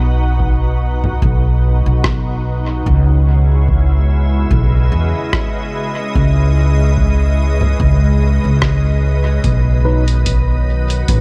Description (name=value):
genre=ambient dub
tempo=73 BPM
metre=4/4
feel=swing 55% on 16ths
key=C# minor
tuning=A4 = 440 Hz
part: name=soft additive organ-like pad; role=sustained chords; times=0.0-11.2 s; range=B2 to F#5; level=-24 LUFS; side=equal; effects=ensemble chorus, built-in reverb
part: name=upright bass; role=bass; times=0.0-11.2 s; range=A1 to E2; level=-15 LUFS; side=equal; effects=none
part: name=electronic kick drum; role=drums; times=0.4-11.2 s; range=none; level=-22 LUFS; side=equal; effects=studio reverb
part: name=lo-fi sampler-style drum kit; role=drums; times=1.0-11.2 s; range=congas, hi-hat, rim click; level=-25 LUFS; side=equal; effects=studio reverb, dub echo
part: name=bright tine electric piano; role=stabs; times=9.8-10.0 s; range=F#3 to B4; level=-26 LUFS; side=equal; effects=phaser, dub echo
room=little or no reverb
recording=none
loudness=-15 LUFS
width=mono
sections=0.0-11.2 A section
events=none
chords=0.0 B; 2.9 C#m7; 9.4 B